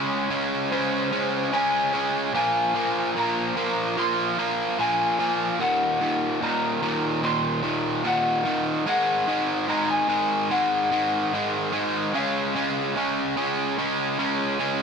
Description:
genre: rock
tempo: 73 BPM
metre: 4/4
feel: straight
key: Eb dorian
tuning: A4 = 437 Hz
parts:
  - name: electric slide guitar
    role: melody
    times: 0.0-14.6 s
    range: C5 to C6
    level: -26 LUFS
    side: left 1 dB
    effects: digital delay
  - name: overdriven semi-hollow guitar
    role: riff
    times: 0.0-14.8 s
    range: Eb2 to Db4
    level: -23 LUFS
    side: right 1 dB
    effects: none
room: light reverb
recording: none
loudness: -22 LUFS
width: side -6 dB against mid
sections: 0.0-14.8 A section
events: none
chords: 0.0 Db5; 2.3 Bb5; 5.6 Ebm; 8.9 Ab5; 12.1 Db

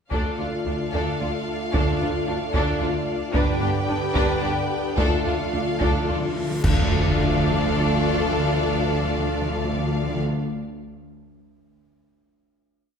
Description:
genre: cinematic, epic orchestral film score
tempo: 74 BPM (dotted quarters)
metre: 6/8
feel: straight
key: D dorian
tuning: A4 = 440 Hz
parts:
  - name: clear symphonic violin section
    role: melody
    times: 0.1-10.2 s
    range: F5 to G5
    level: -32 LUFS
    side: left 2 dB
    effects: none
  - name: rich studio violin section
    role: second line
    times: 0.1-10.2 s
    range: D4 to B4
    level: -32 LUFS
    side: left 3 dB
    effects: none
  - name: rich symphonic viola section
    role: accompaniment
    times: 0.1-10.2 s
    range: D4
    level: -30 LUFS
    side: right 2 dB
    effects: none
  - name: clear trombone section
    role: sustained chords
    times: 0.1-10.2 s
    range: D3 to B3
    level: -33 LUFS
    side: right 5 dB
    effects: none
  - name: mellow French horn section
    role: sustained chords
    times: 0.1-10.2 s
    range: D4 to G4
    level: -32 LUFS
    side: left 4 dB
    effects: none
  - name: rich symphonic string section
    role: sustained chords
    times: 0.1-10.2 s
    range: D4 to D5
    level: -29 LUFS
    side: left 2 dB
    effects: none
  - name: clear symphonic cello section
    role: bass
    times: 0.1-10.2 s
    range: D2 to G2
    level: -30 LUFS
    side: right 1 dB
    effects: none
  - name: rich symphonic double bass section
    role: bass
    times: 0.1-10.2 s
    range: G1 to D2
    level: -29 LUFS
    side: equal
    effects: none
  - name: solo taiko drums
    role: drums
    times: 0.1-7.7 s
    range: none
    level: -26 LUFS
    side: equal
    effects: none
  - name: cymbal swell, clash cymbals and concert bass drum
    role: percussion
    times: 3.3-7.7 s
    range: none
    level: -28 LUFS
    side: equal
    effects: none
  - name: timpani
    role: percussion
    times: 5.0-10.2 s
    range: D3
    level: -29 LUFS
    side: equal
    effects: none
  - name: reverse cymbal and impact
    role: sound effects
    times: 6.2-8.3 s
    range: none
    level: -36 LUFS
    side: equal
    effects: none
room: wet scoring stage reverb, RT60 1.5 s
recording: heard from further back in the room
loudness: -20 LUFS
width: side -6 dB against mid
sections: 0.1-6.6 theme; 6.6-9.9 final chord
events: timpani fill 5.0-6.6; reverse cymbal 6.2-6.6; band accent 6.6-7.2; impact 6.6-8.3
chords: 0.1 Dm; 3.3 G; 5.0 Dm

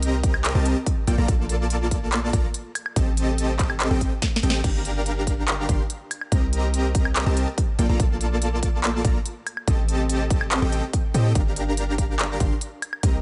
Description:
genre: future bass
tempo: 143 BPM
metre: 4/4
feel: half-time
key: G minor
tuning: A4 = 441 Hz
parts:
  - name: dense compressed supersaw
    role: riff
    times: 0.0-13.2 s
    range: Bb3 to C6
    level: -29 LUFS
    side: equal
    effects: sidechain pumping, tape echo
  - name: warm 808-style bass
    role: bass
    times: 0.0-13.2 s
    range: G1 to A2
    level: -26 LUFS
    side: equal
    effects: tube saturation, sidechain pumping
  - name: trap drum kit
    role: drums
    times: 0.0-13.1 s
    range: crash cymbal, handclaps, hi-hat, snare drum, woodblock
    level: -29 LUFS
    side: equal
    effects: studio reverb
  - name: electronic kick drum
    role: drums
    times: 0.2-13.1 s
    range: none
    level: -26 LUFS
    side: equal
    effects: studio reverb
room: digital ambience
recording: nothing above 10.9 kHz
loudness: -23 LUFS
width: mono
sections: 0.0-13.2 A section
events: drum fill 4.2-4.6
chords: 0.0 Cm7; 1.1 Bbmaj7; 2.8 Am7b5; 4.6 Gm7; 6.3 Cm7; 7.8 Bbmaj7; 9.5 Am7b5; 11.4 Gm7

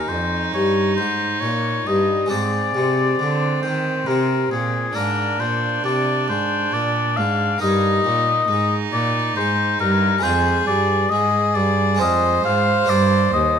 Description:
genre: classical, baroque-style sonata movement with continuo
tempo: 68 BPM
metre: 3/4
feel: straight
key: Eb major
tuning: A4 = 439 Hz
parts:
  - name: warm oboe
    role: melody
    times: 0.0-13.6 s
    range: Ab4 to F5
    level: -21 LUFS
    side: left 6 dB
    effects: none
  - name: rich violin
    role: second line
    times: 0.0-13.6 s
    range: C4 to C5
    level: -24 LUFS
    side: right 7 dB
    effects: none
  - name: harpsichord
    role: accompaniment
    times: 0.0-13.6 s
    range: Eb2 to Bb4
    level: -24 LUFS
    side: left 1 dB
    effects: none
  - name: dark cello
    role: bass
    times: 0.0-13.6 s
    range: Eb2 to Eb3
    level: -23 LUFS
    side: right 2 dB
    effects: none
room: moderate large studio reverb, RT60 1.2 s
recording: minimal, uncompressed stereo recording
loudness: -17 LUFS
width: side -7 dB against mid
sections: 0.0-13.6 A section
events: none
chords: 0.0 Eb7; 2.3 Ab; 5.0 Bb7/Ab; 7.6 Eb/G; 10.2 Fm; 12.0 Ddim/F; 12.9 Gm

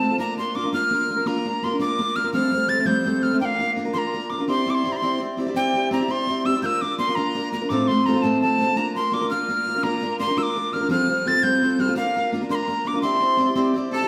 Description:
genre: celtic folk, Celtic jig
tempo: 112 BPM (dotted quarters)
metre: 6/8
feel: straight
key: unclear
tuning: A4 = 440 Hz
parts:
  - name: bright mid whistle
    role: melody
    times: 0.0-14.1 s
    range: F5 to A6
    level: -25 LUFS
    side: equal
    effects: slapback echo
  - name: picked steel-string acoustic guitar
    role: accompaniment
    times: 0.0-14.1 s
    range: A2 to D5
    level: -25 LUFS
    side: equal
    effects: none
  - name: loud bright bagpipes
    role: second line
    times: 13.9-14.1 s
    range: A4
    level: -28 LUFS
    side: equal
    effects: none
room: wet stone room reverb, RT60 1.3 s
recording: band playing live in one room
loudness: -22 LUFS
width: mono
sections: 0.0-5.6 A section; 5.6-14.1 A section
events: none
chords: 0.2 Bb; 2.3 Fadd9; 3.4 Bb; 4.5 Cadd9; 6.6 Bb; 7.7 F/A; 8.8 Bb; 10.9 Fadd9; 12.0 Bb; 13.0 Cadd9

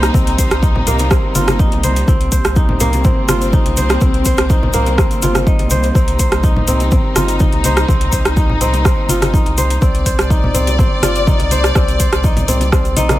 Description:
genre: afro house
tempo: 124 BPM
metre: 4/4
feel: straight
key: C minor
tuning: A4 = 440 Hz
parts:
  - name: rich studio string section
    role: sustained chords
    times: 0.0-13.2 s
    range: C3 to D5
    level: -21 LUFS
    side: left 2 dB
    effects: sidechain pumping
  - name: kora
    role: arpeggios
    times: 0.0-13.2 s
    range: Bb3 to C5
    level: -20 LUFS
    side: right 1 dB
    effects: sidechain pumping, tape echo
  - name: warm sub bass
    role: bass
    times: 0.0-13.2 s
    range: G1 to C2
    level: -18 LUFS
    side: equal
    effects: sidechain pumping
  - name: afro-pop drum kit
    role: drums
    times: 0.0-13.2 s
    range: hi-hat, rim click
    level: -20 LUFS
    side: right 1 dB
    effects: studio reverb
  - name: tube shaker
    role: percussion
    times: 0.0-13.2 s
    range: none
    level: -27 LUFS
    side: left 1 dB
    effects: none
  - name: electronic kick drum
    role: drums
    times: 0.1-12.8 s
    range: none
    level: -14 LUFS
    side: equal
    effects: studio reverb
  - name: congas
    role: percussion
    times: 0.1-13.2 s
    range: none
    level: -22 LUFS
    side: left 2 dB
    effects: none
room: studio ambience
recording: none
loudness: -11 LUFS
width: side -15 dB against mid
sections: 0.0-13.2 A section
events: none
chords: 0.0 Cm7

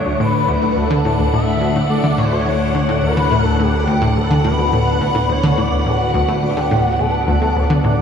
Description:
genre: ambient, sequencer-driven space music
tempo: 106 BPM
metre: 4/4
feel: straight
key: D major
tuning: A4 = 439 Hz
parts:
  - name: expressive synth lead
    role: melody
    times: 0.0-8.0 s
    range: F#4 to E5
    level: -20 LUFS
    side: left 1 dB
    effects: ensemble chorus, tape echo
  - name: phased string machine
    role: sustained chords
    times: 0.0-8.0 s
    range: D3 to F#5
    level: -21 LUFS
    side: left 2 dB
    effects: ensemble chorus, phaser
  - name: fat analog bass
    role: bass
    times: 0.0-8.0 s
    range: D2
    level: -23 LUFS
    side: equal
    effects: none
  - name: bubbling stepped-filter texture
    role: texture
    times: 0.0-8.0 s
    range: D4 to D7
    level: -29 LUFS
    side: right 2 dB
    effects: chorus, built-in reverb
  - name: analog pluck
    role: riff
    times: 0.1-8.0 s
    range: D2 to D3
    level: -18 LUFS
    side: equal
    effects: chorus, vintage 12-bit sampler grit, tape echo
room: wet cathedral reverb, RT60 5.8 s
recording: in a vast, echoing space, studio reverb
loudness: -14 LUFS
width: side -7 dB against mid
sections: 0.0-8.0 A section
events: none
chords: 0.0 D

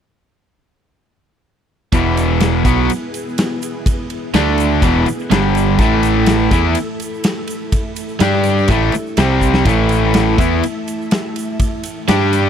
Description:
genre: classic rock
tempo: 124 BPM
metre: 4/4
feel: straight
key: unclear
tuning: A4 = 440 Hz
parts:
  - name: string machine, cellos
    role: sustained chords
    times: 1.9-12.5 s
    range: G3 to G5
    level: -26 LUFS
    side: equal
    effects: ensemble chorus
  - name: distorted electric guitar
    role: riff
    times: 1.9-12.5 s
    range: E2 to G4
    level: -17 LUFS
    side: left 11 dB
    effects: overdrive
  - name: overdriven electric guitar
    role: riff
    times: 1.9-12.5 s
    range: E2 to G4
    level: -17 LUFS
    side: right 10 dB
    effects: none
  - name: growling picked electric bass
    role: bass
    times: 1.9-12.5 s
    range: E1 to G2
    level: -18 LUFS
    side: equal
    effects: overdrive
  - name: big rock drum kit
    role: drums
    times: 1.9-12.4 s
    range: kick drum, ride cymbal, snare drum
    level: -19 LUFS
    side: equal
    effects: none
  - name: tube shaker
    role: percussion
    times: 1.9-12.4 s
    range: none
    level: -36 LUFS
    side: right 8 dB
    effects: none
room: little or no reverb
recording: dry, close 1970s-style studio recording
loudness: -13 LUFS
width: side -8 dB against mid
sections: 1.9-12.5 A section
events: drum fill 9.4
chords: 1.9 E; 4.3 D5; 4.8 E; 5.3 G5; 5.8 A5; 8.2 G5; 8.7 A5; 9.2 C5; 9.7 A5

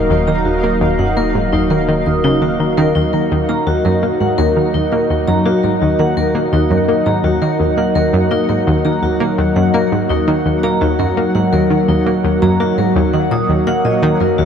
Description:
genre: ambient, sequencer-driven space music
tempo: 84 BPM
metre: 4/4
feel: straight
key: Eb minor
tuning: A4 = 440 Hz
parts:
  - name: lush unison pad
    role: sustained chords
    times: 0.0-14.4 s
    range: Gb3 to Eb4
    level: -17 LUFS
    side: right 1 dB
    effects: chorus
  - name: vibraphone with hard mallets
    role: arpeggios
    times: 0.0-14.4 s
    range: Eb4 to Eb6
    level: -21 LUFS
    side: moving between left 6 dB and right 1 dB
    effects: auto-pan, ping-pong delay
  - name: warm sub bass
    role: bass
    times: 0.0-2.9 s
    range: Eb1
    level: -24 LUFS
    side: equal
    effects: none
  - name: pulsing gated texture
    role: texture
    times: 0.0-14.4 s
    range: Gb3 to Gb5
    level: -23 LUFS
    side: left 1 dB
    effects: chorus, built-in reverb
  - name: analog pluck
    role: riff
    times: 0.1-14.4 s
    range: Eb2 to Bb3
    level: -16 LUFS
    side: equal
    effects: chorus, ping-pong delay
room: wet huge ambient reverb, RT60 8.3 s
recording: none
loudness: -12 LUFS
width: side -7 dB against mid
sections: 0.0-3.0 A section; 3.0-14.4 B section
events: none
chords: 0.0 Ebm

